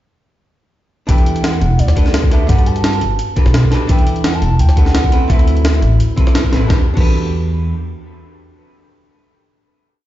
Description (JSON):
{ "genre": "liquid drum and bass", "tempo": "171 BPM", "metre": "4/4", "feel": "swing 53% on 16ths", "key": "E minor", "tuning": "A4 = 440 Hz", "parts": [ { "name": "hollow clarinet-like synth lead", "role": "melody", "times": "1.1-6.4 s", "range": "D5 to A5", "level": "-24 LUFS", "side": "right 1 dB", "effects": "chorus, digital delay" }, { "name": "archtop guitar, miked and amplified", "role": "accompaniment", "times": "1.1-10.1 s", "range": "C4 to B4", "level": "-22 LUFS", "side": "equal", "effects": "tape echo" }, { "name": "upright bass", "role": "bass", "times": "1.1-7.7 s", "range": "E1 to B2", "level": "-15 LUFS", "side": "equal", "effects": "none" }, { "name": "breakbeat sampler-style drum kit", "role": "drums", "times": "1.1-7.1 s", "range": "crash cymbal, hi-hat, snare drum", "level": "-21 LUFS", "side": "equal", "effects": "small room ambience" }, { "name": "electronic kick drum", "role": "drums", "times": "1.1-7.1 s", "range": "none", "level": "-13 LUFS", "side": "equal", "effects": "small room ambience" } ], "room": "digital ambience", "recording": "played on a big sound system in a bare room, large studio reverb, nothing above 7.6 kHz", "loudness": "-11 LUFS", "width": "side -14 dB against mid", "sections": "1.1-6.7 drop; 6.7-9.5 final chord", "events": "drop 1.1-6.7", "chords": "1.1 Em11; 2.5 Gmaj9; 3.7 Em11; 5.1 D13; 6.7 Em11" }